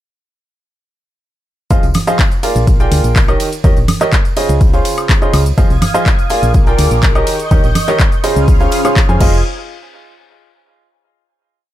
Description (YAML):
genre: piano house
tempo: 124 BPM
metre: 4/4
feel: straight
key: F minor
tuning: A4 = 439 Hz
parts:
  - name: clear baby grand piano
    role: riff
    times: 1.7-9.4 s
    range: Db3 to Ab5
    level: -16 LUFS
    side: right 2 dB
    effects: sidechain pumping, ping-pong delay
  - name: solid FM bass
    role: bass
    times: 1.7-9.4 s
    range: F1 to F2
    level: -15 LUFS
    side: equal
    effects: sidechain pumping
  - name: electronic kick drum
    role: drums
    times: 1.7-9.3 s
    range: none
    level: -12 LUFS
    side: equal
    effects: none
  - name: house drum kit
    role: drums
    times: 1.7-9.3 s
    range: crash cymbal, handclaps, hi-hat, ride cymbal, shaker, woodblock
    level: -20 LUFS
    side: left 2 dB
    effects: none
  - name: tambourine and congas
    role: percussion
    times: 1.7-9.4 s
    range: none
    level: -22 LUFS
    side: right 3 dB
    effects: none
  - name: analog string pad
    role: sustained chords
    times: 5.6-9.4 s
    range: Db4 to Ab6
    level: -21 LUFS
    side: left 1 dB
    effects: ensemble chorus, sidechain pumping
room: digital ambience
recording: none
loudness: -10 LUFS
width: side -13 dB against mid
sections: 1.7-9.4 drop; 9.4-11.4 final hit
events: drop 1.7-9.4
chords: 1.7 Fm7; 2.7 Bb7; 3.4 Eb7; 4.4 Dbmaj9; 5.6 Fm7; 6.5 Bb7; 7.3 Eb7; 8.2 Dbmaj9; 9.2 Fm7; 9.4 N.C.